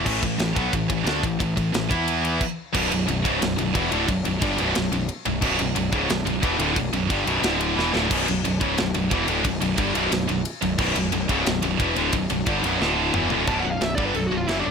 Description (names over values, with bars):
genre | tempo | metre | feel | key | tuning
heavy metal | 179 BPM | 4/4 | straight | B minor | A4 = 440 Hz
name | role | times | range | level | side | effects
heavy high-gain guitar | riff | 0.0-14.7 s | B1 to E4 | -26 LUFS | left 11 dB | distortion
heavy high-gain guitar | riff | 0.0-14.7 s | B1 to E4 | -26 LUFS | right 14 dB | distortion
fuzz picked electric bass | bass | 0.0-14.7 s | B0 to E2 | -29 LUFS | equal | overdrive
tight metal drum kit | drums | 0.1-14.6 s | crash cymbal, kick drum, ride cymbal, snare drum, toms | -27 LUFS | equal | none
heavy high-gain guitar | riff | 2.7-13.5 s | B1 to G3 | -28 LUFS | left 1 dB | distortion
high-gain lead guitar | melody | 13.5-14.7 s | D4 to A5 | -26 LUFS | equal | distortion
room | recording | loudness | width
little or no reverb | none | -20 LUFS | side -6 dB against mid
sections
0.0-2.7 A section; 2.7-13.5 B section; 13.5-14.7 C section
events
stop 2.4-2.7; half time 2.7-13.5; drum fill 7.8-8.1, 12.8-13.5; lead electric guitar solo 13.5-14.7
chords
0.1 A5; 1.9 E5; 2.6 N.C.; 2.7 Bm; 7.4 D5; 7.8 Bm; 12.8 D5; 13.1 Bm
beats
| 0.06 0.39 0.73 1.07 | 1.40 1.74 2.07 2.41 | 2.75 3.08 3.42 3.75 | 4.09 4.42 4.76 5.09 | 5.43 5.76 6.10 6.43 | 6.77 7.11 7.44 7.78 | 8.11 8.45 8.78 9.12 | 9.45 9.79 10.12 10.46 | 10.79 11.13 11.46 11.80 | 12.13 12.47 12.81 13.14 | 13.48 13.81 14.15 14.49